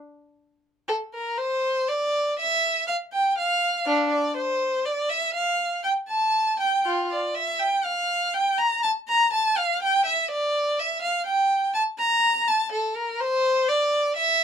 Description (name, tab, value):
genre	classical, baroque-style suite movement for unaccompanied violin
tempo	61 BPM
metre	3/4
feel	rubato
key	D minor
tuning	A4 = 440 Hz
part	rich violin	solo	0.9-14.4 s	D4 to Bb5	-21 LUFS	equal	none
room	moderate small room reverb, RT60 0.6 s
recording	none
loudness	-21 LUFS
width	side -8 dB against mid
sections	0.9-14.4 A section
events	none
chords	none